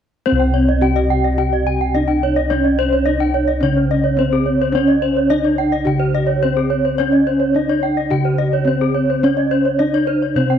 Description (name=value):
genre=Balinese gamelan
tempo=107 BPM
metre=4/4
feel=straight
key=C pelog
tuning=A4 = 440 Hz
part: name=gamelan-type bronze metallophone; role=melody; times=0.3-10.6 s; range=C4 to G4-45c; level=-18 LUFS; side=equal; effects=none
part: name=gamelan-type bronze metallophone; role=arpeggios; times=0.3-10.5 s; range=Ab4-40c to Ab5-40c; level=-21 LUFS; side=left 10 dB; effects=none
part: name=gamelan-type bossed gongs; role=bass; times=0.3-10.6 s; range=C2 to Db4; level=-19 LUFS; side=right 1 dB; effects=none
part: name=gamelan-type bronze metallophone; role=arpeggios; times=0.4-10.6 s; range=C5 to G5-45c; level=-23 LUFS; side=right 12 dB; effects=none
room=moderate plate reverb, RT60 2.7 s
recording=1960s-style stereo with parts hard left and right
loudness=-14 LUFS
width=side -8 dB against mid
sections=0.3-10.6 A section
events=none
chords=none